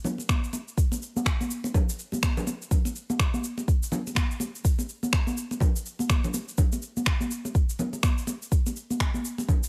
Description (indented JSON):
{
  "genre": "house",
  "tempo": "124 BPM",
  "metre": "4/4",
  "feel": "swing 60% on 16ths",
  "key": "none",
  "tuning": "none",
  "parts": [
    { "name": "congas", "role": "percussion", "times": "0.0-9.6 s", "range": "none", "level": "-33 LUFS", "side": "equal", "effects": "none" },
    { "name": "electronic shaker and finger snaps", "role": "drums", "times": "0.1-9.7 s", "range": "none", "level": "-35 LUFS", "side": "equal", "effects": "overdrive" },
    { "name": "electronic kick drum", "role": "drums", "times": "0.3-9.6 s", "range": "none", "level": "-26 LUFS", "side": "equal", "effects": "none" }
  ],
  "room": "little or no reverb",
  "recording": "none",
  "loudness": "-27 LUFS",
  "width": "mono",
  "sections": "0.0-9.7 A section",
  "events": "none",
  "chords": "none",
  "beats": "0.29 | 0.78 1.26 1.74 2.23 | 2.71 3.19 3.68 4.16 | 4.65 5.13 5.61 6.10 | 6.58 7.07 7.55 8.03 | 8.52 9.00 9.48"
}